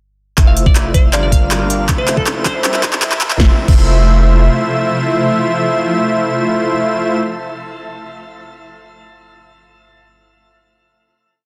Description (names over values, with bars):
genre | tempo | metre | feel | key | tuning
future bass | 159 BPM | 4/4 | half-time | F major | A4 = 438 Hz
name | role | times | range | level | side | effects
shimmering ambient pad | sustained chords | 1.5-7.2 s | C3 to E5 | -27 LUFS | equal | chorus, built-in reverb, sidechain pumping
airy dreamy lead | arpeggios | 0.4-7.2 s | E5 to F5 | -26 LUFS | equal | chorus, vintage 12-bit sampler grit, sidechain pumping, digital delay
soft supersaw | riff | 0.4-7.2 s | G3 to F5 | -21 LUFS | equal | sidechain pumping, low-pass filter, digital delay
saturated sub bass | bass | 0.4-4.5 s | F1 to C2 | -18 LUFS | equal | sidechain pumping
big-room dance drum kit | drums | 0.4-3.8 s | crash cymbal, handclaps, hi-hat, snare drum | -21 LUFS | equal | none
electronic kick drum | drums | 0.4-3.8 s | none | -14 LUFS | equal | none
riser | sound effects | 1.4-3.4 s | none | -35 LUFS | equal | none
glassy wavetable pluck | melody | 0.5-2.7 s | A4 to F5 | -27 LUFS | equal | chorus, sidechain pumping, dub echo
room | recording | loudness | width
moderate shimmer reverb, RT60 4.4 s | dense, heavily limited modern master, high-pass filter | -14 LUFS | mono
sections
0.4-3.4 build; 3.4-6.4 final chord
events
build-up 0.4-3.4; drum fill 0.4-3.4; filter sweep on supersaw synth 0.4-3.4; filter sweep 0.4-3.4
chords
0.4 Fmaj7; 1.1 Gm7; 1.9 Fmaj7; 2.6 C7; 3.4 Fmaj7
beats
| 0.38 0.76 1.13 1.51 | 1.89 2.27 2.64 3.02 | 3.40 3.77 4.15 4.53 | 4.91 5.28 5.66 6.04